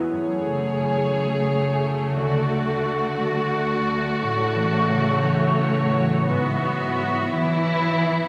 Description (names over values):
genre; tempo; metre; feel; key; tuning
cinematic, emotional film score for orchestra; 58 BPM (dotted quarters); 6/8; rubato; F# minor; A4 = 442 Hz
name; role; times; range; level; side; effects
concert harp; arpeggios; 0.0-8.3 s; F#2 to B5; -26 LUFS; equal; none
clear studio violin section; melody; 0.1-8.2 s; C#5 to E5; -38 LUFS; equal; none
rich studio violin section; second line; 0.1-8.3 s; E4 to G#4; -28 LUFS; equal; none
clear studio viola section; accompaniment; 0.1-8.2 s; A3 to B3; -31 LUFS; equal; none
warm French horn section; sustained chords; 0.1-8.0 s; C#3 to G#4; -35 LUFS; equal; none
rich studio cello section; bass; 0.1-8.3 s; D2 to E3; -31 LUFS; equal; none
room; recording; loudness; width
wet scoring stage reverb, RT60 1.6 s; none; -22 LUFS; mono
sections
0.1-8.3 A section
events
none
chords
0.1 F#madd9; 2.2 D; 4.2 A6; 6.3 Eadd9/G#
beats
| 0.12 1.15 | 2.17 3.20 | 4.21 5.23 | 6.27 7.33